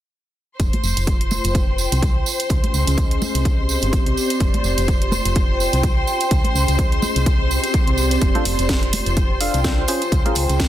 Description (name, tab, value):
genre	piano house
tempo	126 BPM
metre	4/4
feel	swing 57% on 16ths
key	unclear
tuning	A4 = 440 Hz
part	rich studio violin section	sustained chords	0.6-10.7 s	C5 to C6	-25 LUFS	left 1 dB	sidechain pumping
part	solid FM bass	bass	0.6-10.7 s	F1 to Db2	-22 LUFS	equal	sidechain pumping
part	electronic kick drum	drums	0.6-10.7 s	none	-19 LUFS	equal	overdrive
part	house drum kit	drums	0.6-10.7 s	hi-hat, snare drum	-25 LUFS	right 2 dB	overdrive
part	tambourine and congas	percussion	0.6-10.7 s	none	-27 LUFS	right 3 dB	none
part	warbly tape-like pad	texture	1.0-10.7 s	C4 to G5	-25 LUFS	equal	chorus, built-in reverb, sidechain pumping
part	percussive organ stab	riff	8.3-10.4 s	Db4 to F5	-24 LUFS	left 1 dB	wide subtle chorus, sidechain pumping, tape echo
room	light reverb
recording	dense, heavily limited modern master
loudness	-16 LUFS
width	side -12 dB against mid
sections	0.6-10.7 A section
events	none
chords	0.6 F5; 2.3 Dbmaj7; 3.2 C5; 4.4 F5; 6.1 Dbmaj7; 7.0 C5; 8.2 F6; 9.9 Dbmaj7